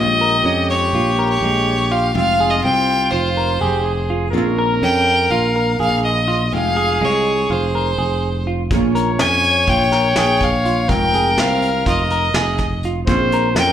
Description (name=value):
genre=progressive instrumental, band music in an uneven meter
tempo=247 BPM (eighths)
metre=9/8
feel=straight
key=F minor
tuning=A4 = 442 Hz
part: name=clear violin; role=melody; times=0.0-13.7 s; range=C5 to Ab5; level=-18 LUFS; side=left 1 dB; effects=none
part: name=clear flugelhorn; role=second line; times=0.0-13.7 s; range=F4 to Db5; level=-22 LUFS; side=left 1 dB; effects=slapback echo
part: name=archtop guitar, miked and amplified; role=accompaniment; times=0.0-13.7 s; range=C3 to G5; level=-26 LUFS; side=right 1 dB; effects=double-tracked left and right
part: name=sustaining fretless electric bass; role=bass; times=0.0-13.7 s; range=F1 to F2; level=-21 LUFS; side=equal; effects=none
part: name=semi-hollow electric guitar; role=arpeggios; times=0.2-13.7 s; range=Ab3 to Bb4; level=-23 LUFS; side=right 2 dB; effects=slapback echo
part: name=vintage brush drum kit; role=drums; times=8.7-13.7 s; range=hi-hat, kick drum, snare drum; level=-22 LUFS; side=equal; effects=none
room=light reverb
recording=live gig heard through the venue's PA, club reverb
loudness=-14 LUFS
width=side -10 dB against mid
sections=0.0-13.7 A section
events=none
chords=0.0 Bbm7; 2.2 Fmadd9; 4.3 Bbm7; 6.5 Fmadd9; 8.7 Bbm7; 10.9 Fmadd9; 13.1 Bbm7